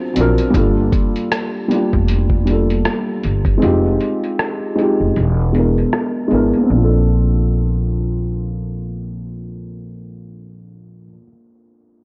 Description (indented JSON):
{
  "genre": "lo-fi hip hop",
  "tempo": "78 BPM",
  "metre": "4/4",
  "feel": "swing 58% on 16ths",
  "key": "Bb major",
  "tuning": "A4 = 439 Hz",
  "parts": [
    { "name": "felt-muted upright piano", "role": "accompaniment", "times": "0.0-12.0 s", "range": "F#3 to C5", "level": "-20 LUFS", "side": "equal", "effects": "none" },
    { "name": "upright bass", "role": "bass", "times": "0.2-11.2 s", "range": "E1 to A#1", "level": "-21 LUFS", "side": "equal", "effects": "transformer saturation" },
    { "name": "lo-fi sampler-style drum kit", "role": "drums", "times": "0.2-6.7 s", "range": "hi-hat, kick drum, rim click", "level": "-23 LUFS", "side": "equal", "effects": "none" }
  ],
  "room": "light reverb, studio ambience",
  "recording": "dry, gritty hardware recording, low-pass filter",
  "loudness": "-17 LUFS",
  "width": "mono",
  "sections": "0.0-6.7 A section; 6.7-9.8 B section",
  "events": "filter sweep 0.0-6.7; kick muted 3.6-6.7",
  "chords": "0.0 D7alt; 0.5 Gm9; 3.6 Fm7; 5.2 E7#11; 6.7 Bbmaj7"
}